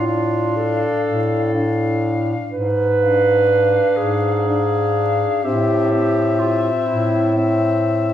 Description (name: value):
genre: classical, lyrical piece for single-reed quartet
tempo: 41 BPM (dotted quarters)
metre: 6/8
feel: rubato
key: A minor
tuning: A4 = 440 Hz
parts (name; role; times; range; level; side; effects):
- mellow soprano saxophone; melody; 0.0-8.1 s; E5 to F5; -24 LUFS; left 6 dB; none
- warm clarinet; second line; 0.0-7.3 s; E4 to B4; -19 LUFS; right 2 dB; none
- clear tenor saxophone; accompaniment; 0.0-8.1 s; C4 to D4; -24 LUFS; left 3 dB; none
- clear bass clarinet; bass; 0.0-8.1 s; G#2 to A2; -20 LUFS; equal; none
room: wet recital hall reverb, RT60 1.4 s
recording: recorded in a church or concert hall, vinyl crackle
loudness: -16 LUFS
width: side -11 dB against mid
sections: 0.0-8.1 A section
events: none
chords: 0.0 Dm/A; 2.5 G#dim7; 5.4 Am